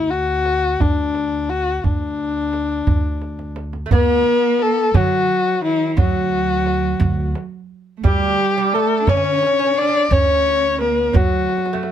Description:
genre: Persian modal ensemble.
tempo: 58 BPM (dotted quarters).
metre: 6/8.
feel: straight.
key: D dastgah chahargah.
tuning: A4 = 441 Hz.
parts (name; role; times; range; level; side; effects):
warm kamancheh; melody; 0.0-11.9 s; D4 to D5; -18 LUFS; left 4 dB; none.
upright bass; bass; 0.0-11.5 s; D2 to D3; -22 LUFS; equal; none.
tombak; percussion; 0.1-11.9 s; none; -20 LUFS; right 3 dB; none.
clear cello; second line; 3.9-11.9 s; Eb3+43c to D4; -23 LUFS; right 8 dB; none.
lute; second line; 3.9-11.9 s; F#3 to C#4; -26 LUFS; right 6 dB; none.
room: light reverb.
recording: close, detailed microphones.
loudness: -15 LUFS.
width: side -10 dB against mid.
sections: 0.0-3.9 A section; 3.9-11.9 B section.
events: drum fill 3.2-3.9, 11.5-11.9.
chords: none.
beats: 0.80 | 1.84 2.87 | 3.91 4.94 | 5.97 7.01 | 8.04 9.07 | 10.11 11.14.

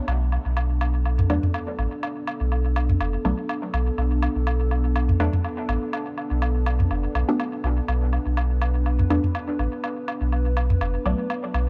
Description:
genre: dub techno.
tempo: 123 BPM.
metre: 4/4.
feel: swing 55% on 16ths.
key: B minor.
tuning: A4 = 440 Hz.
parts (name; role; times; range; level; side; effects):
dark analog pad; sustained chords; 0.0-11.7 s; B3 to B4; -33 LUFS; equal; chorus, phaser.
pure sine sub bass; bass; 0.1-11.7 s; F#1 to E2; -25 LUFS; equal; none.
electronic woodblock and toms; percussion; 0.1-11.7 s; none; -29 LUFS; equal; dub echo.
filtered dub chord stab; stabs; 1.3-11.4 s; F#3 to D4; -32 LUFS; equal; phaser, dub echo.
room: little or no reverb.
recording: none.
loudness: -24 LUFS.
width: mono.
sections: 0.1-11.7 A section.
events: none.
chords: 0.1 Bm7.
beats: | 0.08 0.57 1.05 1.54 | 2.03 2.52 3.01 3.49 | 3.98 4.47 4.96 5.45 | 5.93 6.42 6.91 7.40 | 7.88 8.37 8.86 9.35 | 9.84 10.32 10.81 11.30.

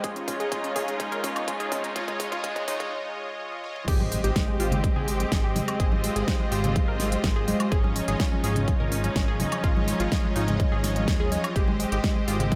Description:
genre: progressive house.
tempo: 125 BPM.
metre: 4/4.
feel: straight.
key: Ab major.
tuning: A4 = 439 Hz.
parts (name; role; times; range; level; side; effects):
bright symphonic string section; sustained chords; 0.0-12.6 s; Ab2 to G4; -35 LUFS; equal; sidechain pumping.
unison pluck; arpeggios; 0.0-12.6 s; Ab3 to Bb4; -35 LUFS; equal; sidechain pumping, analog delay.
soft supersaw; stabs; 0.0-12.6 s; Ab3 to Eb5; -34 LUFS; equal; cassette tape, sidechain pumping, analog delay.
electronic kick drum; drums; 0.0-12.6 s; none; -28 LUFS; equal; studio ambience.
pop drum kit; drums; 0.0-12.6 s; crash cymbal, hi-hat, snare drum, toms, woodblock; -35 LUFS; equal; high-pass filter on hats, studio ambience, high-pass filter on perc, high-pass filter on toms, high-pass filter on cymbals, high-pass filter on snare.
riser and impact; sound effects; 0.1-5.8 s; none; -41 LUFS; equal; none.
fat analog bass; bass; 3.9-12.6 s; Ab1 to Eb2; -31 LUFS; equal; sidechain pumping.
congas; percussion; 4.0-12.6 s; none; -36 LUFS; equal; sidechain pumping on perc.
room: moderate plate reverb, RT60 1.1 s.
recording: dreamy mix soaked in reverb, high-pass filter.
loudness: -26 LUFS.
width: mono.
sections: 0.0-3.9 A section; 3.9-12.6 B section.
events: build-up 0.0-3.9; drum fill 0.0-2.9, 3.5-3.9; filter sweep on supersaw synth 0.0-3.9; filter sweep on string section 0.0-3.9; break 2.9-3.9; drop 3.9-12.6; impact 3.9-5.8.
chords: 0.0 Dbadd9/Ab; 3.9 Abmaj7; 7.7 Dbadd9/Ab; 11.6 Abmaj7.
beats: | 0.04 0.52 1.00 1.48 | 1.96 2.44 2.92 3.40 | 3.88 4.36 4.84 5.32 | 5.80 6.28 6.76 7.24 | 7.72 8.20 8.68 9.16 | 9.64 10.12 10.60 11.08 | 11.56 12.04 12.52.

